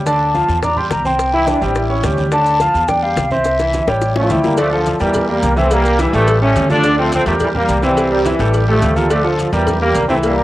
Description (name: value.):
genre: latin, salsa.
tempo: 212 BPM.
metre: 4/4.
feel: straight.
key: D minor.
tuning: A4 = 440 Hz.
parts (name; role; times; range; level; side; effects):
upright bass; bass; 0.0-10.4 s; A1 to E2; -19 LUFS; equal; none.
mellow hollow jazz flute; melody; 0.1-4.3 s; C#5 to C6; -17 LUFS; left 1 dB; cassette tape.
bright grand piano; accompaniment; 0.1-10.4 s; D3 to D6; -19 LUFS; right 1 dB; cassette tape.
bongos and cowbell; percussion; 0.1-10.4 s; none; -25 LUFS; left 4 dB; none.
congas; percussion; 0.1-10.4 s; none; -27 LUFS; equal; none.
guiro; percussion; 0.1-10.4 s; none; -34 LUFS; left 3 dB; none.
maracas; percussion; 0.1-10.4 s; none; -37 LUFS; right 3 dB; none.
mellow trombone section; second line; 1.3-4.6, 8.1-8.6 s; E3 to F4; -21 LUFS; left 1 dB; cassette tape.
bright trombone section; melody; 4.2-10.4 s; D3 to D4; -16 LUFS; equal; cassette tape.
room: light reverb.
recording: home recording on cassette.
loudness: -12 LUFS.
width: side -15 dB against mid.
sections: 0.0-4.6 A section; 4.6-10.4 B section.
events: drum fill 3.5-4.6.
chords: 0.1 Dm; 0.6 C9; 1.2 C; 1.8 A7; 2.3 Dm; 2.9 Cadd9; 3.5 C; 4.0 A7; 4.6 Dm; 5.1 Edim; 5.7 C7; 6.3 A7; 6.8 Dm; 7.4 Edim; 8.0 C7; 8.5 Gm9/A; 9.1 Dm; 9.7 Edim.